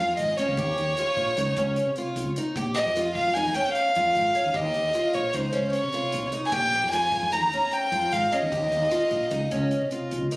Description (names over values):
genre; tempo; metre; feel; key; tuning
progressive instrumental, band music in an uneven meter; 151 BPM; 5/4; straight; unclear; A4 = 440 Hz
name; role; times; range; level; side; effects
dark violin; melody; 0.0-9.9 s; C5 to Bb5; -24 LUFS; equal; plate reverb, tape echo
picked twelve-string acoustic guitar; arpeggios; 0.0-10.4 s; Db4 to G4; -29 LUFS; equal; plate reverb
woody fretless electric bass; bass; 0.0-10.3 s; Ab1 to C3; -31 LUFS; equal; none
damped 70s drum kit; drums; 0.2-10.4 s; hi-hat, kick drum; -41 LUFS; equal; none
room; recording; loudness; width
moderate studio reverb, RT60 0.6 s; recorded on a phone in the room, club reverb, compression; -22 LUFS; side -22 dB against mid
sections
0.0-10.4 A section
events
none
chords
0.0 Bbm7 (rootless); 0.6 Eb7; 2.6 Bbm (rootless); 4.5 Eb7; 6.5 Bbm7; 8.5 Eb7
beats
0.18 | 0.58 0.97 1.37 1.77 2.16 | 2.56 2.96 3.35 3.75 4.15 | 4.55 4.94 5.34 5.74 6.14 | 6.53 6.93 7.33 7.73 8.12 | 8.52 8.92 9.32 9.72 10.12